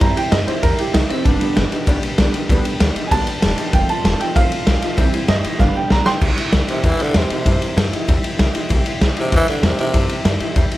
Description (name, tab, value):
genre	rockabilly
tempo	193 BPM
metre	4/4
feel	straight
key	C major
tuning	A4 = 440 Hz
part	picked old ladder-braced acoustic guitar	accompaniment	0.0-10.8 s	G2 to A4	-26 LUFS	left 2 dB	plate reverb
part	warm upright piano	accompaniment	0.0-6.2 s	D3 to C6	-21 LUFS	right 3 dB	plate reverb
part	upright bass	bass	0.0-10.7 s	E1 to G2	-20 LUFS	equal	none
part	raw garage drum kit	drums	0.0-10.8 s	crash cymbal, kick drum, ride cymbal, snare drum	-18 LUFS	equal	none
part	growling tenor saxophone	melody	6.7-10.2 s	C3 to E3	-20 LUFS	equal	slapback echo, plate reverb
room	light reverb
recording	none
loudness	-15 LUFS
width	side -16 dB against mid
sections	0.0-6.2 A section; 6.2-10.8 B section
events	upright piano solo 0.0-6.2; drum fill 5.6-6.2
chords	0.0 C; 1.3 G; 3.7 F; 5.0 C; 5.6 G; 6.2 C